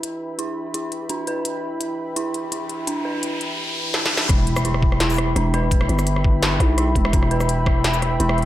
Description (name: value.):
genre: half-time drum and bass.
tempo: 169 BPM.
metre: 4/4.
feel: half-time.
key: unclear.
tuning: A4 = 440 Hz.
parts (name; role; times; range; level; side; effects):
dark analog pad; sustained chords; 0.0-8.5 s; E4 to B5; -27 LUFS; equal; chorus, sidechain pumping.
dark detuned synth bell; arpeggios; 0.0-8.5 s; D4 to B4; -27 LUFS; right 1 dB; chorus, low-pass filter, dub echo.
industrial drum kit; drums; 0.0-8.5 s; hi-hat, rim click, shaker, snare drum; -24 LUFS; equal; none.
riser and impact; sound effects; 2.7-5.7 s; none; -28 LUFS; equal; none.
growling 808-style bass; bass; 4.3-8.5 s; E1 to B1; -20 LUFS; equal; tube saturation.
electronic kick drum; drums; 4.3-7.7 s; none; -19 LUFS; equal; none.
room: light reverb.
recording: none.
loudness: -18 LUFS.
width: side -14 dB against mid.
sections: 0.0-4.3 A section; 4.3-8.5 B section.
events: riser 2.7-4.3; drum fill 3.9-4.3; drop 4.3-8.5; impact 4.3-5.7.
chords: 0.0 Em.